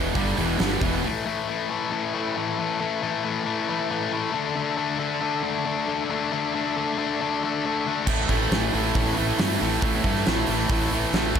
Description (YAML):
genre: hard rock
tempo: 137 BPM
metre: 4/4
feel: straight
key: unclear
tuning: A4 = 440 Hz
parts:
  - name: bright tonewheel organ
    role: sustained chords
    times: 0.0-11.4 s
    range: A3 to F#5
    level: -34 LUFS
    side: right 4 dB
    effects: chorus vibrato, slow rotary speaker
  - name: distorted electric guitar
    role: riff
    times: 0.0-1.0, 8.1-11.4 s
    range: E2 to F#4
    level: -30 LUFS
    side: right 2 dB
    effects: distortion
  - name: heavy high-gain guitar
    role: riff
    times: 0.0-11.4 s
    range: E2 to D4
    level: -25 LUFS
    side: left 7 dB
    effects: distortion
  - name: high-gain distorted guitar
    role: riff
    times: 0.0-1.0, 8.1-11.4 s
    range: E2 to A3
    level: -29 LUFS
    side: right 16 dB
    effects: distortion
  - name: growling fingered electric bass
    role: bass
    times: 0.0-1.0, 8.1-11.4 s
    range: E1 to G2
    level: -28 LUFS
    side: right 1 dB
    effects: overdrive
  - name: huge arena drum kit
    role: drums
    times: 0.2-0.9, 8.1-11.4 s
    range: crash cymbal, hi-hat, kick drum, snare drum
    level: -26 LUFS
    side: right 1 dB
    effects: none
room: light reverb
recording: none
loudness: -22 LUFS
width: side -7 dB against mid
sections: 0.0-1.0 A section; 1.0-11.4 B section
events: none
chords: 0.0 Em; 1.0 A5; 4.3 D5; 8.1 Am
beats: 0.17 0.61 | 1.05 1.49 1.93 2.37 | 2.81 3.25 3.69 4.12 | 4.56 5.00 5.44 5.88 | 6.31 6.75 7.19 7.63 | 8.07 8.51 8.95 9.38 | 9.82 10.26 10.70 11.14